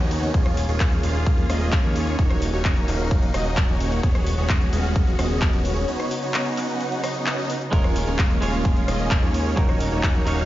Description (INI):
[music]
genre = EDM, festival progressive house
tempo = 130 BPM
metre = 4/4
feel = straight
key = Eb minor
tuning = A4 = 440 Hz
[part]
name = rich studio string section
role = sustained chords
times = 0.0-10.5 s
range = Db3 to Gb4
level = -32 LUFS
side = left 1 dB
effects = sidechain pumping
[part]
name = supersaw chords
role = riff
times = 0.0-10.5 s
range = Bb3 to F#5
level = -26 LUFS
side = right 1 dB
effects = phaser, sidechain pumping, tape echo
[part]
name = fat analog bass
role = bass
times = 0.0-10.5 s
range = Eb1 to D#2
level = -25 LUFS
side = equal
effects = sidechain pumping
[part]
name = big-room dance drum kit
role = drums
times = 0.0-10.5 s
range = cabasa, handclaps, hi-hat, rim click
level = -30 LUFS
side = left 1 dB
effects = overdrive
[part]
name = electronic kick drum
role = drums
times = 0.3-10.1 s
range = none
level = -20 LUFS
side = equal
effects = overdrive
[part]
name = clean electric guitar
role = accompaniment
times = 7.7-10.5 s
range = Gb3 to Db5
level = -28 LUFS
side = right 2 dB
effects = sidechain pumping, tape echo
[sound]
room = digital ambience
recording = played on a big sound system in a bare room, stone room reverb, nothing above 7.5 kHz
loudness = -19 LUFS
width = side -14 dB against mid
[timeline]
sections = 0.0-10.5 A section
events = break 5.9-7.7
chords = 0.3 Bbm7/Eb; 2.2 Ebm7; 4.0 Db7sus4/Eb; 5.9 Badd9; 7.7 Bbm7/Eb; 9.6 Ebm7